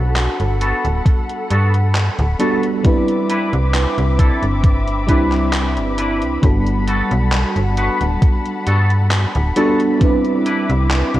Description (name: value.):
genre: vaporwave.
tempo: 67 BPM.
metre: 4/4.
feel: straight.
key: G major.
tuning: A4 = 440 Hz.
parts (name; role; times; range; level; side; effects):
FM electric piano with soft pad layer; accompaniment; 0.0-11.2 s; G3 to B4; -20 LUFS; right 1 dB; tremolo, lush chorus, tape echo.
muted studio string section; sustained chords; 0.0-11.2 s; G3 to D6; -25 LUFS; left 2 dB; none.
slap-like FM bass; bass; 0.0-11.2 s; D1 to G2; -17 LUFS; equal; tube saturation.
gated 80s digital drum machine; drums; 0.2-11.2 s; handclaps, hi-hat; -24 LUFS; equal; gated reverb, overdrive.
twangy electric guitar; riff; 0.6-10.7 s; B3 to B4; -25 LUFS; left 1 dB; ensemble chorus, vintage 12-bit sampler grit, low-pass filter, tape echo.
electronic kick drum; drums; 1.1-10.2 s; none; -14 LUFS; equal; overdrive.
room: light reverb.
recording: cassette tape.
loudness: -14 LUFS.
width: side -14 dB against mid.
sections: 0.0-11.2 A section.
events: none.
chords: 0.0 Gmaj9; 2.8 Cmaj9; 6.4 Gmaj9; 10.0 Cmaj9.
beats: 0.16 1.06 1.95 | 2.85 3.74 4.64 5.54 | 6.43 7.33 8.22 9.12 | 10.01 10.91.